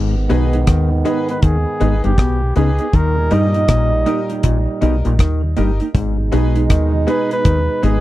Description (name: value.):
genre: roots reggae.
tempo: 80 BPM.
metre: 4/4.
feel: swing 62% on 16ths.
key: G# harmonic minor.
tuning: A4 = 440 Hz.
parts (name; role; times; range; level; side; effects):
warm trombone section; second line; 0.0-8.0 s; G#2 to D#4; -23 LUFS; right 4 dB; dub echo.
overdriven clav; riff; 0.0-8.0 s; G2 to G3; -23 LUFS; left 5 dB; none.
deep dub fingered electric bass; bass; 0.0-8.0 s; G1 to G2; -16 LUFS; equal; none.
mellow electric guitar; accompaniment; 0.3-8.0 s; A#3 to G#4; -23 LUFS; right 3 dB; none.
bright upright piano; stabs; 0.3-8.0 s; D#4 to D#5; -25 LUFS; left 3 dB; none.
deep reggae drum kit; drums; 0.3-8.0 s; hi-hat, kick drum, rim click; -16 LUFS; equal; none.
warm flugelhorn; melody; 1.1-8.0 s; G4 to D#5; -22 LUFS; equal; dub echo.
room: little or no reverb.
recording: dry, close 1970s-style studio recording.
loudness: -14 LUFS.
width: side -15 dB against mid.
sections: 0.0-8.0 A section.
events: none.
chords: 0.0 G#m; 2.9 D#; 5.9 G#m.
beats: 0.68 1.43 2.18 | 2.94 3.69 4.44 5.20 | 5.95 6.70 7.45.